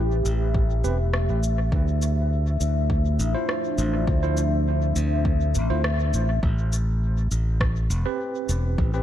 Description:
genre	ambient dub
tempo	102 BPM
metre	4/4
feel	straight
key	A minor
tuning	A4 = 445 Hz
part	deep dark ambient pad	sustained chords	0.0-9.0 s	F3 to E5	-29 LUFS	left 2 dB	chorus, built-in reverb
part	modern bright fingered electric bass	bass	0.0-9.0 s	E1 to D2	-22 LUFS	equal	none
part	electronic cabasa and rim click	drums	0.3-8.6 s	none	-33 LUFS	equal	dub echo
part	electronic kick drum	drums	0.5-8.9 s	none	-24 LUFS	equal	overdrive
part	tine electric piano	stabs	0.8-9.0 s	C4 to C5	-32 LUFS	right 4 dB	medium stereo tremolo, dub echo
room	little or no reverb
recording	dark, warm production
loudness	-21 LUFS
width	side -11 dB against mid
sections	0.0-6.4 A section; 6.4-9.0 A section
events	band accent 5.8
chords	0.0 A7(no3); 1.7 Dm9; 6.4 Am7

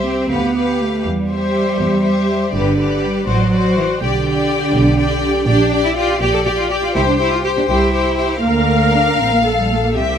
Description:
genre	quick classical-period movement for symphony orchestra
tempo	81 BPM (dotted quarters)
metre	6/8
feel	straight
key	unclear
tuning	A4 = 441 Hz
part	clear chamber violin section	melody	0.0-10.2 s	D5 to G5	-26 LUFS	left 4 dB	none
part	rich chamber violin section	second line	0.0-10.2 s	B4 to F5	-20 LUFS	left 6 dB	none
part	rich symphonic viola section	accompaniment	0.0-10.2 s	F#4 to Bb4	-21 LUFS	right 1 dB	none
part	clear chamber double bass section	bass	0.0-10.2 s	G1 to E2	-20 LUFS	right 2 dB	none
part	rich studio cello section	bass	0.0-10.2 s	D3 to A4	-18 LUFS	right 2 dB	none
room	light reverb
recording	none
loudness	-13 LUFS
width	side -8 dB against mid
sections	0.0-10.2 A section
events	none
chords	0.3 G7/D; 1.1 C/E; 2.5 G; 3.3 D7/A; 4.0 G/B; 5.5 Gm/Bb; 6.9 C; 8.4 Bb/D

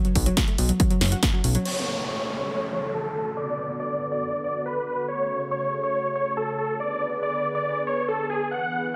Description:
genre	uplifting trance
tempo	140 BPM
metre	4/4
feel	straight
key	F# minor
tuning	A4 = 438 Hz
part	analog pluck	arpeggios	0.0-1.6 s	F#2 to F#4	-30 LUFS	equal	chorus, vintage 12-bit sampler grit, sidechain pumping, tape echo
part	big-room dance drum kit	drums	0.0-1.7 s	crash cymbal, hi-hat, snare drum	-30 LUFS	equal	none
part	fat analog bass	bass	0.2-1.6 s	F#1 to B1	-25 LUFS	equal	tube saturation, sidechain pumping
part	electronic kick drum	drums	0.2-1.3 s	none	-25 LUFS	equal	overdrive
part	big supersaw lead	melody	1.7-8.8 s	G#4 to F#5	-29 LUFS	equal	sidechain pumping, low-pass filter
part	lush unison pad	sustained chords	1.7-9.0 s	C#3 to C#5	-34 LUFS	equal	chorus, sidechain pumping
part	downlifter	sound effects	1.7-5.1 s	none	-36 LUFS	equal	none
room	moderate lush hall reverb, RT60 1.8 s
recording	none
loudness	-26 LUFS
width	mono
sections	0.0-1.7 A section; 1.7-9.0 B section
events	filter sweep on supersaw synth 1.7-9.0; filter sweep on analog synth pad 1.7-9.0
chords	0.0 B5; 1.7 F#m; 3.4 Bm; 5.1 F#m; 6.8 G#dim

